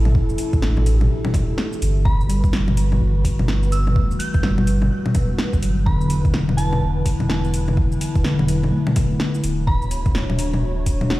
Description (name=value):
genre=future garage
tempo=126 BPM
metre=4/4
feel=swing 61% on 16ths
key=E dorian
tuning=A4 = 436 Hz
part: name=tine electric piano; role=accompaniment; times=0.0-11.2 s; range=D3 to G4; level=-25 LUFS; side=left 1 dB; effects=overdrive, medium stereo tremolo, sidechain pumping, tape echo
part: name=dark analog pad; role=sustained chords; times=0.0-11.2 s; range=E3 to C#5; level=-28 LUFS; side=equal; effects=chorus, vintage 12-bit sampler grit, sidechain pumping
part: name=warm sub bass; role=bass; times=0.0-11.2 s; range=D1 to A1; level=-20 LUFS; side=equal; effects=sidechain pumping
part: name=deep house drum kit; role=drums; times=0.1-11.2 s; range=bongos, hi-hat, shaker, snare drum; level=-24 LUFS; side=left 1 dB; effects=overdrive, studio ambience
part: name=electronic kick drum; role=drums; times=0.1-11.0 s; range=none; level=-21 LUFS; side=equal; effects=overdrive, studio ambience
part: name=soft synth bell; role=melody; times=2.0-9.9 s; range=A5 to G6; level=-33 LUFS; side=right 2 dB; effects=chorus, digital delay
room=little or no reverb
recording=played on a big sound system in a bare room, stone room reverb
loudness=-17 LUFS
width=side -17 dB against mid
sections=0.0-11.2 A section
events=none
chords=0.0 A7sus4; 2.1 Gmaj7; 5.9 E5; 9.7 Dmaj7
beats=| 0.15 0.63 1.10 1.58 | 2.06 2.53 3.01 3.48 | 3.96 4.43 4.91 5.39 | 5.86 6.34 6.82 7.29 | 7.77 8.24 8.72 9.20 | 9.67 10.15 10.63 11.10